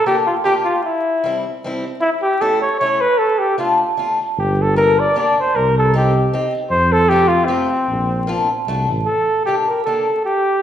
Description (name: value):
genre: alpine folk, alpine dance band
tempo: 153 BPM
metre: 3/4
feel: swing 54% on 8ths, rubato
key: Bb major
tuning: A4 = 438 Hz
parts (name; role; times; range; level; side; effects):
- warm flugelhorn; melody; 0.0-10.6 s; C4 to D5; -16 LUFS; equal; none
- picked acoustic archtop guitar; accompaniment; 0.1-10.1 s; G3 to G4; -22 LUFS; left 1 dB; none
- mellow tuba; bass; 4.4-9.1 s; G1 to F2; -20 LUFS; equal; none
room: wet recital hall reverb, RT60 1.4 s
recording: recorded in a church or concert hall, vinyl crackle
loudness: -15 LUFS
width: side -10 dB against mid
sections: 0.0-9.1 A section; 9.1-10.6 B section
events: none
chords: 0.0 Bb; 0.8 C; 2.0 A; 3.2 Dm; 4.4 Gm; 5.6 Cm; 6.7 F; 7.9 Bb; 8.7 D7; 9.1 Gm